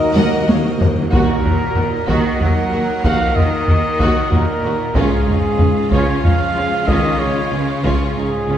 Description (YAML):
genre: cinematic, epic orchestral film score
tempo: 94 BPM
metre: 3/4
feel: straight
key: Eb minor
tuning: A4 = 441 Hz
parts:
  - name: mellow concert flute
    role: second line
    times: 0.0-0.8 s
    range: Eb5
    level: -25 LUFS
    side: left 2 dB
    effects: none
  - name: bright trombone section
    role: sustained chords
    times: 0.0-0.8 s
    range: Gb3 to Bb3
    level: -28 LUFS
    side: right 3 dB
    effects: none
  - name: clear symphonic string section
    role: sustained chords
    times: 0.0-8.6 s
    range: Bb3 to F5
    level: -27 LUFS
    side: equal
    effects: none
  - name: mellow French horn section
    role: sustained chords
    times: 0.0-8.6 s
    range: Eb3 to F4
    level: -30 LUFS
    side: left 4 dB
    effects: none
  - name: mellow trumpet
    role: stabs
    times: 0.0-8.6 s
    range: Ab4 to Gb5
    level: -21 LUFS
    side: right 1 dB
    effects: none
  - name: timpani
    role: percussion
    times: 0.0-2.0 s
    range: Eb3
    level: -23 LUFS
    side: equal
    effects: none
  - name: warm symphonic violin section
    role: second line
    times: 0.1-8.6 s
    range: Eb4 to Eb5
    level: -29 LUFS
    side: left 2 dB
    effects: none
  - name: clear symphonic double bass section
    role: bass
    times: 0.1-8.6 s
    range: Db2 to Eb2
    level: -26 LUFS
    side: right 3 dB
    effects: none
  - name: warm symphonic violin section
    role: melody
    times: 0.2-8.6 s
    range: F4 to Gb5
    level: -29 LUFS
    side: left 2 dB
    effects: none
  - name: rich symphonic viola section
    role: accompaniment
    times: 0.2-8.6 s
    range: Gb3 to Gb5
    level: -27 LUFS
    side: right 1 dB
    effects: none
  - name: clear symphonic cello section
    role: bass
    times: 0.2-8.6 s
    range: Eb2 to Gb3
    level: -24 LUFS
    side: right 2 dB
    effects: none
  - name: mellow tuba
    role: bass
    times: 0.2-8.6 s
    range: Db2 to Eb2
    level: -24 LUFS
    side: right 2 dB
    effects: none
  - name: taiko ensemble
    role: drums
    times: 0.2-8.4 s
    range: none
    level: -18 LUFS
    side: equal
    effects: none
room: wet scoring stage reverb, RT60 1.9 s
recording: heard from further back in the room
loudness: -14 LUFS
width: side -10 dB against mid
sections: 0.0-1.1 A section; 1.1-8.6 B section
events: timpani fill 0.0-1.1; drum fill 0.2-1.1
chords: 0.0 Ebm; 5.0 Db